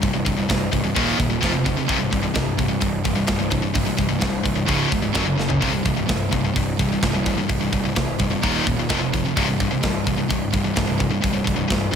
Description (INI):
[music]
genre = heavy metal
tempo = 128 BPM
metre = 4/4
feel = straight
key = C minor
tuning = A4 = 441 Hz
[part]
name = high-gain distorted guitar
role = riff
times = 0.0-12.0 s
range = C2 to F#3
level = -23 LUFS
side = left 8 dB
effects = distortion
[part]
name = sludgy distorted guitar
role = riff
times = 0.0-12.0 s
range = C2 to F#3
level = -24 LUFS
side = right 10 dB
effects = overdrive
[part]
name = fuzz picked electric bass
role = bass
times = 0.0-12.0 s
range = C1 to F#1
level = -27 LUFS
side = equal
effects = overdrive
[part]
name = tight metal drum kit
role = drums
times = 0.0-12.0 s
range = hi-hat, kick drum, snare drum, toms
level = -24 LUFS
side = equal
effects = none
[sound]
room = light reverb, small room ambience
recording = none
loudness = -19 LUFS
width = side -7 dB against mid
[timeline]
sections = 0.0-12.0 A section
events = drum fill 5.4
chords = 0.0 C5; 0.9 Eb5; 1.4 F5; 1.9 C5; 4.7 Db5; 5.1 F#5; 5.6 C5; 8.4 Eb5; 8.9 F5; 9.4 C5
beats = | 0.02 0.48 0.95 1.42 | 1.88 2.35 2.81 3.28 | 3.75 4.21 4.68 5.15 | 5.62 6.08 6.55 7.02 | 7.49 7.95 8.42 8.89 | 9.36 9.82 10.29 10.76 | 11.22 11.69